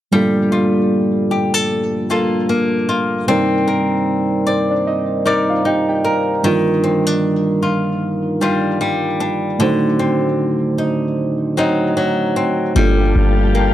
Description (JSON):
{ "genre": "R&B", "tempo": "76 BPM", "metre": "4/4", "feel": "swing 58% on 16ths", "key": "G minor", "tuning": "A4 = 442 Hz", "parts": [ { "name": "muted felt-like synth keys", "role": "accompaniment", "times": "0.1-13.7 s", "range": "G3 to Bb5", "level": "-17 LUFS", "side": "right 1 dB", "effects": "chorus" }, { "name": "flamenco guitar", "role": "arpeggios", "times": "0.1-13.7 s", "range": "D3 to D5", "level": "-18 LUFS", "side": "left 2 dB", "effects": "tape echo" }, { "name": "glassy FM pad", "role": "sustained chords", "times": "13.0-13.7 s", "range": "G4 to A5", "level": "-23 LUFS", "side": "left 3 dB", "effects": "ensemble chorus, built-in reverb" }, { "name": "clean 808-style bass", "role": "bass", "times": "12.8-13.7 s", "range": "G1", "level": "-14 LUFS", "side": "equal", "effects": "none" } ], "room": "light reverb", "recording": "dry, gritty hardware recording", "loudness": "-14 LUFS", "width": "side -12 dB against mid", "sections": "0.1-12.8 A section", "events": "synth keys fill 4.1-6.4", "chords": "0.1 Gm9; 3.3 Cm9; 6.4 Ebmaj9; 9.6 D7b9; 12.8 Gm9" }